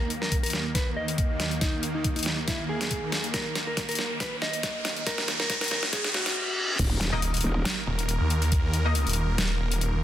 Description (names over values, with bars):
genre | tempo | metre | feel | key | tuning
heavy wobble dubstep | 139 BPM | 4/4 | swing 54% on 16ths, half-time | unclear | A4 = 442 Hz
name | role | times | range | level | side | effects
mellow electric guitar | melody | 0.0-6.7 s | Eb4 to Eb5 | -33 LUFS | equal | low-pass filter, dub echo
supersaw chords | sustained chords | 0.0-10.0 s | Eb2 to Bb4 | -33 LUFS | right 1 dB | sidechain pumping
riser, reverse cymbal and sub drop | sound effects | 0.0-8.5 s | none | -33 LUFS | equal | none
dubstep drum kit | drums | 0.1-9.9 s | crash cymbal, hi-hat, snare drum | -29 LUFS | left 1 dB | overdrive, high-pass filter on hats, high-pass filter on snare, high-pass filter on cymbals
electronic kick drum | drums | 0.3-8.6 s | none | -28 LUFS | equal | none
growl bass | bass | 6.8-7.6 s | Eb1 | -27 LUFS | equal | chorus, overdrive
orchestra-hit-like synth stab | stabs | 7.1-8.9 s | Bb3 to Eb5 | -34 LUFS | left 3 dB | built-in reverb, dub echo
snarling distorted saw bass | bass | 7.1-10.0 s | Eb1 to Eb2 | -25 LUFS | equal | distortion, overdrive
room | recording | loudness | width
moderate plate reverb, RT60 1.4 s | dense, heavily limited modern master, high-pass filter | -24 LUFS | side -12 dB against mid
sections
0.0-6.8 A section; 6.8-10.0 B section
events
build-up 0.0-6.8; drum fill 0.0-6.4; riser 0.0-6.4; filter sweep 0.0-6.8; reverse cymbal 5.9-6.8; drop 6.8-10.0; impact 6.8-8.5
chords
0.0 Eb5